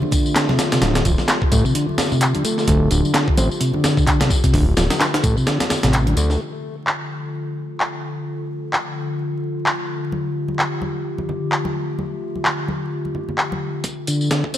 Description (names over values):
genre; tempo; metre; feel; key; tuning
breakbeat, breaks; 129 BPM; 4/4; swing 58% on 16ths; D minor; A4 = 440 Hz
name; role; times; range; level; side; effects
warbly tape-like pad; sustained chords; 0.0-14.6 s; D3 to A4; -25 LUFS; left 2 dB; chorus, built-in reverb, sidechain pumping
mellow tonewheel organ; riff; 0.0-6.4, 14.1-14.6 s; C3 to C4; -21 LUFS; equal; slow rotary speaker, overdrive, low-pass filter, ping-pong delay
congas; percussion; 0.0-6.2, 10.1-13.6 s; none; -30 LUFS; equal; none
breakbeat sampler-style drum kit; drums; 0.1-6.4, 13.8-14.6 s; hi-hat, kick drum, snare drum; -19 LUFS; equal; high-pass filter on hats, high-pass filter on snare, high-pass filter on kick, high-pass filter on room
electronic tambourine and handclaps; drums; 0.1-14.6 s; none; -24 LUFS; left 1 dB; none
fat analog bass; bass; 0.8-6.4 s; D1 to D2; -18 LUFS; equal; none
room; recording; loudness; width
light reverb; vinyl crackle; -18 LUFS; side -12 dB against mid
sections
0.0-6.4 A section; 6.4-13.8 B section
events
kick drops out 5.5-6.4; filter sweep on ambient pad 6.4-13.8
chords
0.0 Dm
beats
0.36 | 0.82 1.29 1.75 2.22 | 2.68 3.15 3.61 4.08 | 4.54 5.01 5.47 5.94 | 6.41 6.87 7.33 7.80 | 8.27 8.73 9.20 9.66 | 10.13 10.59 11.06 11.52 | 11.99 12.45 12.92 13.38 | 13.85 14.31